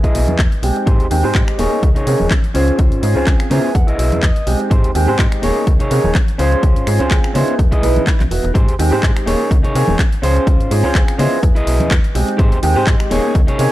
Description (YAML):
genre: filtered disco house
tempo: 125 BPM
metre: 4/4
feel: swing 54% on 16ths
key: Ab major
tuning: A4 = 440 Hz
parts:
  - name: bright baby grand piano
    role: accompaniment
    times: 0.0-13.7 s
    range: G#3 to Eb5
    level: -20 LUFS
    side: right 2 dB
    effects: phaser, sidechain pumping, low-pass filter
  - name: electric guitar at the edge of break-up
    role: riff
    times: 0.0-13.7 s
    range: Db4 to Bb5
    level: -21 LUFS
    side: equal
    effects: sidechain pumping, low-pass filter
  - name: slap-like FM bass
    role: bass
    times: 0.0-13.7 s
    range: Eb1 to Db3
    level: -18 LUFS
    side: equal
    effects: sidechain pumping, low-pass filter
  - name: electronic kick drum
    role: drums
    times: 0.0-13.5 s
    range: none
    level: -14 LUFS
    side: equal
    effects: studio reverb
  - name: house drum kit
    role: drums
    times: 0.0-13.7 s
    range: finger snaps, handclaps, hi-hat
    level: -25 LUFS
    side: left 1 dB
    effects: sidechain pumping on hats, studio reverb
  - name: tambourine and congas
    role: percussion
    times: 0.1-13.7 s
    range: none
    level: -24 LUFS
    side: left 1 dB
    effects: sidechain pumping on perc, low-pass filter on perc
room: little or no reverb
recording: dry, gritty hardware recording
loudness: -12 LUFS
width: side -15 dB against mid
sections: 0.0-13.7 A section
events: filter sweep 0.0-13.7; clean electric guitar fill 3.3-4.7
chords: 0.0 Emaj7; 0.9 Abmaj7; 1.6 Eb7sus4; 2.6 Dbmaj7; 3.8 Emaj7; 4.7 Abmaj7; 5.4 Eb7sus4; 6.4 Dbmaj7; 7.6 Emaj7; 8.6 Abmaj7; 9.3 Eb7sus4; 10.2 Dbmaj7; 11.4 Emaj7; 12.4 Abmaj7; 13.1 Eb7sus4